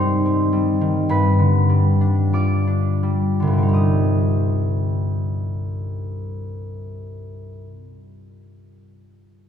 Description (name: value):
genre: classical, solo harp piece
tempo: 41-55 BPM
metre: 4/4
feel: rubato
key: C minor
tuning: A4 = 439 Hz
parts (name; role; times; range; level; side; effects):
- concert harp; solo; 0.0-8.0 s; C2 to Eb6; -18 LUFS; equal; none
room: wet church reverb, RT60 3.3 s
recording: recorded in a church or concert hall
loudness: -17 LUFS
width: side -8 dB against mid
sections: 0.0-3.7 A section; 3.7-9.0 B section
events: slowing down 0.0-3.7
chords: 0.0 Cm/G; 1.1 G7; 3.7 Cm